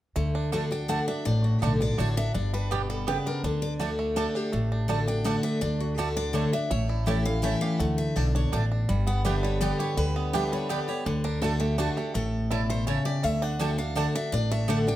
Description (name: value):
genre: bluegrass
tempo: 165 BPM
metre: 3/4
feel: straight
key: D major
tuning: A4 = 444 Hz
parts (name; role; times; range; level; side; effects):
- bluegrass banjo; melody; 0.2-15.0 s; D3 to G4; -35 LUFS; right 5 dB; none
- picked steel-string acoustic guitar; accompaniment; 0.2-15.0 s; G2 to G4; -28 LUFS; left 1 dB; none
- upright bass; bass; 0.2-15.0 s; G1 to D2; -29 LUFS; equal; none
- mandolin; stabs; 0.5-14.8 s; A3 to A5; -34 LUFS; right 7 dB; none
- picked steel-string acoustic guitar; melody; 0.7-15.0 s; F#4 to G5; -34 LUFS; left 3 dB; none
room: moderate large studio reverb, RT60 1.1 s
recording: none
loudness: -24 LUFS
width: side -14 dB against mid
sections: 0.2-8.9 A section; 8.9-15.0 B section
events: none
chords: 0.2 D; 2.4 G; 3.4 D; 6.7 A; 7.8 D; 8.9 G; 11.1 D; 12.2 A; 13.2 D